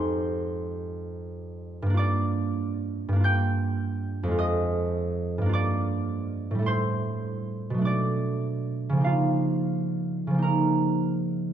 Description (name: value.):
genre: classical, solo harp piece.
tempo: 51 BPM (dotted quarters).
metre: 6/8.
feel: uneven beats, rubato.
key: unclear.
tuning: A4 = 440 Hz.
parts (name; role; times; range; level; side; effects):
concert harp; solo; 0.0-11.5 s; F2 to G6; -24 LUFS; right 1 dB; none.
room: light reverb.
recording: close, detailed microphones.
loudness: -24 LUFS.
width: side -9 dB against mid.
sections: 0.0-11.5 A section.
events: none.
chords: 0.0 Fm9; 2.0 Gm7; 4.4 Fm7; 5.5 Gm7; 6.7 Am7; 7.9 Bm7; 9.0 Db69.